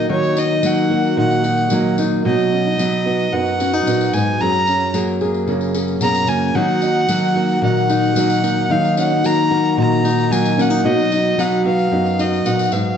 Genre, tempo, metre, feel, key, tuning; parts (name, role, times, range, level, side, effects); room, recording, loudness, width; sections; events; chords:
acoustic folk duo or small band; 112 BPM; 4/4; straight; A4 = 440 Hz
rich fiddle; melody; 0.0-13.0 s; C#5 to A#5; -20 LUFS; equal; slapback echo
fingerpicked steel-string acoustic guitar; accompaniment; 0.0-13.0 s; F#2 to G#4; -18 LUFS; left 3 dB
warm upright piano; arpeggios; 0.0-13.0 s; F#3 to G#4; -21 LUFS; right 6 dB
tambourine; percussion; 0.2-12.8 s; -32 LUFS; left 5 dB
moderate scoring stage reverb, RT60 1.5 s; dark, warm production, nothing above 7.9 kHz; -14 LUFS; side -8 dB against mid
0.0-13.0 A section
0.0 D#m; 2.2 B; 4.4 F#add9; 6.6 D#m; 10.8 B